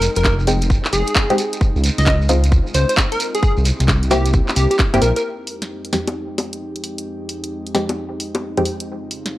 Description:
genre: UK garage, two-step garage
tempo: 132 BPM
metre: 4/4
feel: swing 64% on 16ths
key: F minor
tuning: A4 = 440 Hz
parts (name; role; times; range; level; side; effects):
- plucky unison lead; melody; 0.0-5.2 s; G4 to Eb5; -22 LUFS; equal; analog delay
- airy breathy pad; sustained chords; 0.0-9.4 s; F2 to G5; -31 LUFS; equal; chorus, sidechain pumping
- dark detuned saw bass; bass; 0.0-5.1 s; F1 to Db2; -16 LUFS; equal; none
- garage drum kit; drums; 0.0-9.3 s; bongos, handclaps, hi-hat, snare drum; -22 LUFS; equal; small room ambience
- shekere; percussion; 0.0-5.2 s; none; -29 LUFS; right 3 dB; none
- electronic kick drum; drums; 0.2-4.9 s; none; -17 LUFS; equal; small room ambience
- punchy chord stab; stabs; 0.5-8.6 s; F2 to G5; -21 LUFS; equal; chorus, analog delay
room: digital ambience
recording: dry, gritty hardware recording, cassette tape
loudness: -15 LUFS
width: side -16 dB against mid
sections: 0.0-5.2 A section; 5.2-9.4 B section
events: filter sweep on synth stab 0.0-5.2; filter sweep on analog synth pad 5.2-9.4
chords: 0.0 Fm9; 1.6 Dbmaj7; 3.4 C7; 5.2 Fm9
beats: 0.25 0.70 1.16 | 1.61 2.06 2.52 2.97 | 3.43 3.88 4.34 4.79 | 5.25 5.70 6.16 6.61 | 7.07 7.52 7.97 8.43 | 8.88 9.34

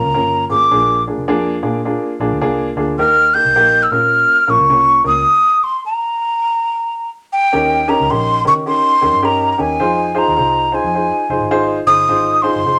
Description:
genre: uptempo 1960s-style soul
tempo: 106 BPM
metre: 4/4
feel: swing 62% on 8ths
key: unclear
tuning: A4 = 440 Hz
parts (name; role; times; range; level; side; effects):
- breathy jazz flute; melody; 0.0-12.8 s; G5 to G6; -15 LUFS; equal; none
- warm upright piano; accompaniment; 0.0-12.8 s; Bb3 to C5; -20 LUFS; equal; none
- vintage muted picked electric bass; bass; 0.0-12.8 s; F1 to Eb3; -28 LUFS; equal; none
room: wet small room reverb, RT60 0.5 s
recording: none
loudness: -14 LUFS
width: mono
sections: 0.0-7.5 A section; 7.5-12.8 B section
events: stop 5.3-7.5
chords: 0.0 Bbm; 0.7 Bb7; 3.0 Eb; 3.8 Bbm; 5.3 N.C.; 7.5 Eb7; 9.8 Fm7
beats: 0.15 | 0.72 1.28 1.85 2.42 | 2.99 3.56 4.12 4.69 | 5.26 5.83 6.40 6.97 | 7.53 8.10 8.67 9.24 | 9.81 10.38 10.94 11.51 | 12.08 12.65

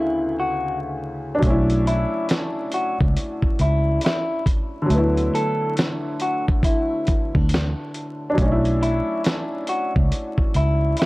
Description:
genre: lo-fi hip hop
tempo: 69 BPM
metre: 4/4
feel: swing 61% on 16ths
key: B minor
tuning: A4 = 440 Hz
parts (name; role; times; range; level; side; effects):
- electric guitar through a small old amp; melody; 0.0-11.1 s; D4 to A4; -25 LUFS; left 1 dB; none
- warm upright piano; accompaniment; 0.0-11.1 s; D2 to E4; -25 LUFS; equal; none
- vintage muted fingered electric bass; bass; 1.4-10.9 s; B1 to D2; -20 LUFS; equal; none
- dusty soul sampler-style drum kit; drums; 1.4-11.1 s; hi-hat, kick drum, snare drum; -21 LUFS; equal; vintage 12-bit sampler grit
room: little or no reverb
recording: dry, gritty hardware recording, vinyl crackle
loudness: -19 LUFS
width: side -20 dB against mid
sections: 0.0-11.1 A section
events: none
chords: 0.0 Dmaj13; 1.4 Bm11; 4.9 D69; 8.4 Bm11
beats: 0.55 | 1.42 2.29 3.16 4.03 | 4.90 5.77 6.64 7.51 | 8.38 9.25 10.12 10.98

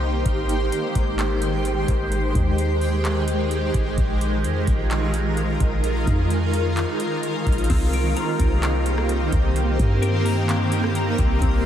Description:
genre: hip hop, atmospheric cloud-rap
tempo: 129 BPM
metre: 4/4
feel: half-time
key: C minor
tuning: A4 = 439 Hz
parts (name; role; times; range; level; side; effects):
- shimmering ambient pad; sustained chords; 0.0-11.7 s; Eb3 to D5; -24 LUFS; right 1 dB; chorus, built-in reverb, phaser, sidechain pumping
- clean 808-style bass; bass; 0.0-11.7 s; Ab1 to G2; -23 LUFS; equal; none
- twinkling granular texture; texture; 0.0-11.7 s; Ab3 to Eb5; -34 LUFS; left 1 dB; built-in reverb
- booming analog drum machine; drums; 0.3-11.6 s; crash cymbal, handclaps, hi-hat, kick drum, rim click; -25 LUFS; equal; none
- clean electric guitar; arpeggios; 7.7-11.7 s; C4 to Bb5; -31 LUFS; left 6 dB; ensemble chorus, ping-pong delay
room: moderate huge ambient reverb, RT60 5.0 s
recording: dreamy mix soaked in reverb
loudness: -19 LUFS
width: side -10 dB against mid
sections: 0.0-7.7 A section; 7.7-11.7 B section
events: none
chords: 0.3 Abmaj7; 4.0 Bb7sus4; 7.7 Cm7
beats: | 0.26 0.72 1.19 1.65 | 2.12 2.58 3.05 3.51 | 3.98 4.44 4.91 5.37 | 5.84 6.30 6.77 7.23 | 7.70 8.16 8.63 9.09 | 9.56 10.02 10.49 10.95 | 11.42

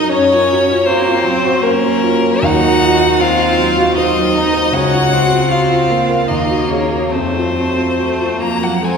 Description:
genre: classical, slow romantic movement for piano quartet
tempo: 77 BPM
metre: 3/4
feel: uneven beats, rubato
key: Bb minor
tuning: A4 = 440 Hz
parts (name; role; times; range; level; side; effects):
- rich violin; melody; 0.0-9.0 s; Bb4 to Bb5; -16 LUFS; left 3 dB; none
- rich cello; second line; 0.0-9.0 s; Gb3 to Gb4; -19 LUFS; right 5 dB; none
- rich violin; second line; 0.0-9.0 s; A3 to Eb4; -19 LUFS; equal; none
- dark baby grand piano; accompaniment; 0.0-9.0 s; Db2 to C5; -16 LUFS; equal; none
room: wet church reverb, RT60 3.2 s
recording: recorded in a church or concert hall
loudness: -11 LUFS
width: side -6 dB against mid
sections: 0.0-9.0 A section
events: none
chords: 0.1 Gbmaj7; 2.4 Cdim/Eb; 4.7 Bbm/Db; 6.3 Ebm; 7.1 F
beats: | 0.11 0.87 1.62 | 2.43 3.20 3.97 | 4.73 5.50 6.29 | 7.13 7.99 8.82

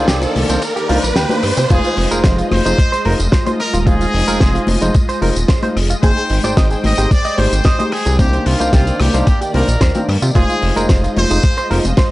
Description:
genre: nu-disco, nu disco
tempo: 111 BPM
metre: 4/4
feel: straight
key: F dorian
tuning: A4 = 440 Hz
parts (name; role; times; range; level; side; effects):
- overdriven tine electric piano; accompaniment; 0.0-11.8 s; Ab3 to G5; -22 LUFS; equal; sidechain pumping
- lush unison pad; sustained chords; 0.0-12.1 s; Eb3 to G5; -25 LUFS; right 1 dB; chorus, phaser, sidechain pumping
- direct-recorded clean electric guitar; riff; 0.0-12.1 s; Bb3 to Eb5; -23 LUFS; right 2 dB; lush chorus
- fat analog bass; bass; 0.0-11.9 s; Eb1 to C3; -17 LUFS; equal; tube saturation
- riser; sound effects; 0.0-1.7 s; none; -21 LUFS; right 1 dB; none
- damped 70s drum kit; drums; 0.1-12.1 s; crash cymbal, hi-hat, rim click, snare drum, tambourine; -22 LUFS; left 1 dB; none
- electronic kick drum; drums; 0.1-12.1 s; none; -13 LUFS; equal; high-pass filter on kick
- bongos and congas; percussion; 0.2-11.8 s; none; -24 LUFS; left 2 dB; none
- bright trumpet section; melody; 1.7-11.9 s; F4 to Eb5; -22 LUFS; left 1 dB; analog delay
room: studio ambience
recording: dry, gritty hardware recording, nothing above 10.3 kHz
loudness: -12 LUFS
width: side -18 dB against mid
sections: 0.0-1.7 A section; 1.7-12.1 B section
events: build-up 0.0-1.7; riser 0.0-1.7; drop 1.7-12.1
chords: 0.0 Cm9; 1.7 Fm7; 6.0 Abmaj7; 8.2 Cm9; 10.4 Fm7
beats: 0.09 0.62 1.17 | 1.71 2.25 2.79 3.33 | 3.87 4.41 4.95 5.49 | 6.03 6.57 7.11 7.65 | 8.19 8.73 9.27 9.81 | 10.36 10.89 11.44 11.98

